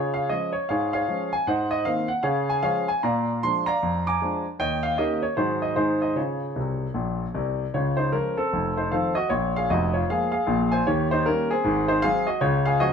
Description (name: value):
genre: jazz, stride piano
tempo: 153 BPM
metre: 4/4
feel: swing 63% on 8ths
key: Db major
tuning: A4 = 441 Hz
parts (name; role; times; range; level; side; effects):
- warm grand piano; solo; 0.0-12.9 s; F1 to D6; -22 LUFS; equal; none
room: moderate studio reverb, RT60 0.7 s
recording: band playing live in one room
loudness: -22 LUFS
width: side -6 dB against mid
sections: 0.0-7.7 A section; 7.7-12.9 A section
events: grand piano fill 6.6-7.7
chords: 0.0 Db; 1.5 Abadd9; 2.3 Db; 3.0 Bb7; 4.6 Eb7; 5.4 Ab7; 5.8 Ab; 6.2 Db; 8.5 F7; 9.3 Bb5; 10.9 Eb7; 11.6 Ab7; 12.4 Db